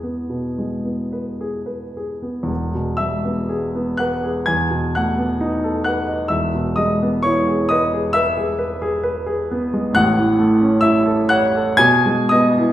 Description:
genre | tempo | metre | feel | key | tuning
classical, romantic nocturne for solo piano | 52-69 BPM | 4/4 | rubato | E major | A4 = 440 Hz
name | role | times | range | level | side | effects
warm grand piano | solo | 0.0-12.7 s | E1 to G#6 | -16 LUFS | equal | none
room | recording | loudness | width
wet recital hall reverb, RT60 1.3 s | recorded in a church or concert hall | -16 LUFS | side -13 dB against mid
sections
0.0-2.5 A section; 2.5-12.7 A section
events
none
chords
0.0 E; 4.5 B7/E; 6.3 E; 10.0 A; 11.8 E/B

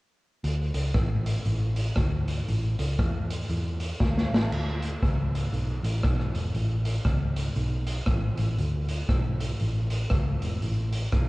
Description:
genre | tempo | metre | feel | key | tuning
ska | 118 BPM | 4/4 | swing 60% on 8ths | unclear | A4 = 441 Hz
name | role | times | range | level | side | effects
hollow-body short-scale picked electric bass | bass | 0.4-11.3 s | E1 to E2 | -27 LUFS | equal | none
raw garage drum kit | drums | 0.4-11.3 s | crash cymbal, hi-hat, kick drum, rim click, snare drum | -28 LUFS | equal | vintage 12-bit sampler grit
room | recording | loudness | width
moderate stone room reverb, RT60 1.2 s | band playing live in one room, cassette tape | -25 LUFS | side -21 dB against mid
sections
0.4-4.5 A section; 4.5-11.3 B section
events
drum fill 4.0-4.5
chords
none

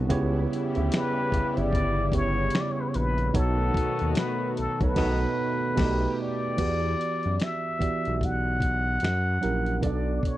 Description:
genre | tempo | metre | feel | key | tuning
R&B, neo-soul | 74 BPM | 4/4 | swing 62% on 16ths | unclear | A4 = 440 Hz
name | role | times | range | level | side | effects
tine electric piano | accompaniment | 0.0-10.4 s | B2 to E5 | -29 LUFS | right 4 dB | none
warm analog pad | sustained chords | 0.0-6.6 s | C#3 to G4 | -37 LUFS | left 3 dB | chorus, tremolo
smooth synth bass | bass | 0.0-10.2 s | G1 to F#2 | -28 LUFS | left 1 dB | none
mellow horn section | stabs | 0.1-6.0 s | C#3 to G4 | -37 LUFS | left 6 dB | none
dusty soul sampler-style drum kit | drums | 0.1-10.4 s | crash cymbal, finger snaps, hi-hat, kick drum, snare drum | -28 LUFS | left 1 dB | none
trumpet with plunger mute | melody | 1.0-10.4 s | A4 to F#5 | -29 LUFS | left 1 dB | none
room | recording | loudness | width
digital ambience | dry, close 1970s-style studio recording | -24 LUFS | side -15 dB against mid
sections
0.0-6.6 A section; 6.6-10.4 B section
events
band accent 5.0-6.6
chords
0.1 C#m7b5; 3.3 B7; 5.8 B7b13; 6.6 Em9; 9.0 F#7b9; 9.8 Bm7

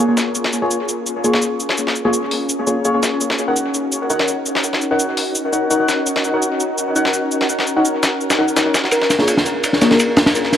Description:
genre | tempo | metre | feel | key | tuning
drum and bass, jungle | 168 BPM | 4/4 | straight | Bb minor | A4 = 444 Hz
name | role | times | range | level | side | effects
soft string machine | sustained chords | 0.0-10.6 s | Db4 to Bb4 | -22 LUFS | equal | ensemble chorus
deep mellow chord stab | stabs | 0.0-10.0 s | Bb3 to Gb5 | -19 LUFS | left 1 dB | lush chorus, dub echo
dusty soul sampler-style drum kit | drums | 0.2-10.6 s | hi-hat, shaker, snare drum | -20 LUFS | left 1 dB | high-pass filter on perc, high-pass filter on snare, high-pass filter on hats, analog delay
soft struck synth lead | melody | 8.9-10.6 s | Bb4 | -21 LUFS | equal | chorus, dub echo
crunchy breakbeat drum kit | drums | 8.9-10.6 s | ride cymbal, snare drum | -15 LUFS | equal | analog delay
room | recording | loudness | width
moderate echo chamber reverb, RT60 1.7 s, small room ambience | echo-heavy mix, vinyl crackle | -15 LUFS | side -9 dB against mid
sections
0.0-10.6 A section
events
filter sweep on string machine 0.0-10.6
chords
0.0 Bbm7; 3.2 Ebm7; 8.9 Bbm7

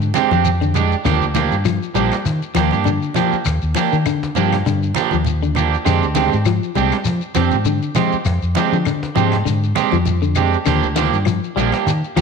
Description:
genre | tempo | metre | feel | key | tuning
afrobeat | 100 BPM | 4/4 | swing 55% on 16ths | F dorian | A4 = 440 Hz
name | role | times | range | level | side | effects
clean electric guitar | arpeggios | 0.0-12.2 s | D3 to G3 | -22 LUFS | left 10 dB | analog chorus
fingered electric bass | bass | 0.0-12.2 s | Bb1 to F3 | -19 LUFS | left 1 dB | none
cajon | drums | 0.0-12.2 s | none | -31 LUFS | equal | none
shekere | percussion | 0.0-12.2 s | none | -27 LUFS | left 8 dB | none
electric guitar at the edge of break-up | stabs | 0.1-12.2 s | F3 to G4 | -19 LUFS | right 10 dB | wide subtle chorus
congas | percussion | 0.1-12.2 s | none | -26 LUFS | right 10 dB | none
claves | percussion | 0.2-12.2 s | none | -32 LUFS | left 15 dB | none
room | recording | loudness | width
moderate echo chamber reverb, RT60 1.6 s, small room ambience | 1960s-style stereo with parts hard left and right | -15 LUFS | side -5 dB against mid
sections
0.0-12.2 A section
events
none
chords
0.0 Fm69; 1.1 Ebmaj9; 5.9 Fm69; 10.7 Ebmaj9

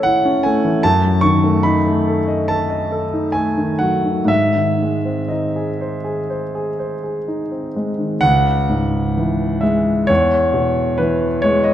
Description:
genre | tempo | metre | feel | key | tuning
classical, romantic nocturne for solo piano | 59-78 BPM | 4/4 | rubato | C# minor | A4 = 441 Hz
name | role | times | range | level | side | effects
warm concert grand piano | solo | 0.0-11.7 s | C#2 to C#6 | -15 LUFS | equal | none
room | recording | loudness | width
moderate concert hall reverb, RT60 2.3 s | none | -15 LUFS | side -11 dB against mid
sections
0.0-8.2 A section; 8.2-11.7 B section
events
none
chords
0.0 A; 0.8 D#dim/F#; 4.3 G#; 8.2 C#m; 10.1 E

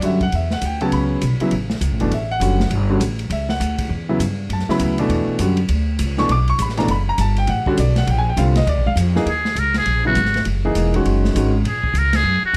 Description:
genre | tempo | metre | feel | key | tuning
modal jazz | 201 BPM | 4/4 | swing 62% on 8ths | F# phrygian, Eb phrygian from 9.3 s | A4 = 441 Hz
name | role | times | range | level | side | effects
warm grand piano | accompaniment | 0.0-11.5 s | B2 to D6 | -23 LUFS | equal | none
upright bass | bass | 0.0-12.6 s | Fb1 to Ab2 | -22 LUFS | equal | none
open jazz drum kit | drums | 0.0-12.6 s | hi-hat, kick drum, ride cymbal, snare drum | -30 LUFS | equal | none
trumpet with metal mute | melody | 9.3-12.6 s | Gb4 to Bb4 | -21 LUFS | equal | none
room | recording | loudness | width
light reverb | close, detailed microphones | -19 LUFS | mono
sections
0.0-9.3 A section; 9.3-12.6 A section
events
muted trumpet solo 9.3-12.6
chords
0.0 F#m7; 8.1 A#7; 9.3 Ebm7

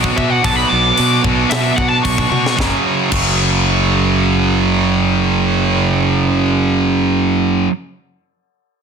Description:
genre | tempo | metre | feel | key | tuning
heavy metal | 112 BPM | 4/4 | straight | unclear | A4 = 439 Hz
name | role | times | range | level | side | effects
high-gain distorted guitar | riff | 0.0-7.7 s | F#2 to F#4 | -19 LUFS | left 17 dB | distortion
high-gain distorted guitar | riff | 0.0-7.7 s | F#2 to B3 | -16 LUFS | right 12 dB | distortion
fuzz fingered electric bass | bass | 0.0-7.7 s | F#1 to B2 | -19 LUFS | left 1 dB | overdrive
tight metal drum kit | drums | 0.0-3.3 s | crash cymbal, hi-hat, kick drum, snare drum, toms | -22 LUFS | left 2 dB | none
high-gain lead guitar | melody | 0.2-2.6 s | E5 to D6 | -19 LUFS | left 2 dB | distortion, tape echo
room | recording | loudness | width
light reverb | dense, heavily limited modern master | -12 LUFS | side -6 dB against mid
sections
0.0-2.6 A section; 2.6-6.9 B section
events
lead electric guitar solo 0.0-2.6; drum fill 2.3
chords
0.0 Bm; 2.6 F#5

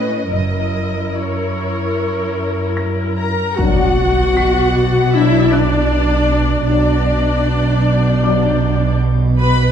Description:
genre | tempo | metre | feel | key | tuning
cinematic | 73-78 BPM | 4/4 | straight | B minor from 3.6 s | A4 = 443 Hz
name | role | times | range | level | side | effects
rich studio violin section | melody | 0.0-9.7 s | C#5 to B5 | -26 LUFS | left 1 dB | none
rich studio viola section | accompaniment | 0.0-9.7 s | C#4 to B4 | -19 LUFS | left 2 dB | none
warm studio cello section | bass | 0.0-9.7 s | F#2 to B2 | -20 LUFS | right 2 dB | none
dark baby grand piano | texture | 0.0-9.7 s | D6 to B6 | -32 LUFS | left 2 dB | none
rich studio double bass section | bass | 0.3-9.7 s | F#1 to B1 | -18 LUFS | right 2 dB | none
rich studio violin section | second line | 3.2-9.7 s | D5 to B5 | -22 LUFS | left 4 dB | none
mellow French horn section | sustained chords | 3.6-8.5 s | F#3 to D4 | -20 LUFS | left 4 dB | none
impact | sound effects | 3.6-6.7 s | none | -21 LUFS | left 1 dB | none
rich studio violin section | texture | 3.6-9.3 s | D6 to A6 | -31 LUFS | left 4 dB | none
room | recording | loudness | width
moderate scoring stage reverb, RT60 1.9 s | dark, warm production | -13 LUFS | side -8 dB against mid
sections
0.0-3.6 A section; 3.6-9.7 B section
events
impact 3.6-6.7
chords
0.3 F#7; 3.6 Bm

